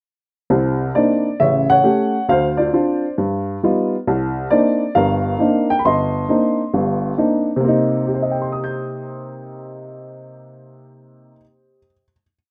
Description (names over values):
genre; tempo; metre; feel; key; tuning
solo jazz; 135 BPM; 4/4; swing 68% on 8ths; C minor; A4 = 442 Hz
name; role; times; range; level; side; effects
dark upright piano; solo; 0.5-12.3 s; G1 to G6; -18 LUFS; equal; none
room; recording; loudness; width
moderate small room reverb, RT60 0.5 s; rough home demo mix; -18 LUFS; mono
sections
0.5-7.6 A section; 7.6-11.2 final chord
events
none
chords
0.5 Cm9; 1.4 A7; 2.3 Dm7; 3.2 Gaug7; 4.1 Cm9; 7.6 Cm7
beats
| 0.50 0.94 1.39 1.84 | 2.28 2.73 3.17 3.62 | 4.06 4.51 4.95 5.40 | 5.84 6.29 6.73 7.17 | 7.62 8.06 8.51 8.95 | 9.39 9.84 10.29 10.73